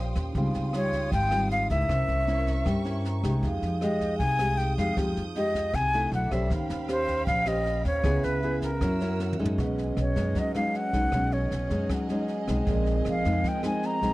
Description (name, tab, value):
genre	bossa nova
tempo	156 BPM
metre	4/4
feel	straight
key	unclear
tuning	A4 = 440 Hz
part	nylon-string guitar	accompaniment	0.0-14.1 s	Ab2 to C5	-31 LUFS	left 1 dB	none
part	vibraphone with soft mallets	accompaniment	0.0-14.1 s	C4 to C6	-35 LUFS	right 3 dB	none
part	warm studio string section	sustained chords	0.0-14.1 s	C4 to G6	-41 LUFS	right 1 dB	none
part	upright bass	bass	0.0-14.1 s	Ab1 to G2	-29 LUFS	equal	none
part	jazz brush drum kit	drums	0.2-14.1 s	kick drum, rim click, snare drum, toms	-35 LUFS	equal	none
part	jazz flute	melody	0.8-14.1 s	Bb4 to Bb5	-28 LUFS	equal	none
room	little or no reverb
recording	dry, close 1970s-style studio recording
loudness	-24 LUFS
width	side -18 dB against mid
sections	0.0-9.6 A section; 9.6-14.1 B section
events	vibraphone fill 2.9-3.4, 11.9-12.7; drum fill 9.2-9.6; flute solo 9.6-14.1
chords	0.4 Dbmaj9#11; 1.9 C7b9; 3.4 Fm9; 6.1 Bm11; 6.5 Eb13; 8.0 Dbm7; 8.8 Gb7; 9.6 B69; 12.7 Bb9sus4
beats	| 0.35 0.74 1.12 1.51 | 1.89 2.28 2.66 3.05 | 3.43 3.81 4.20 4.58 | 4.97 5.35 5.74 6.12 | 6.51 6.89 7.28 7.66 | 8.05 8.43 8.82 9.20 | 9.59 9.97 10.36 10.74 | 11.13 11.51 11.90 12.28 | 12.67 13.05 13.44 13.83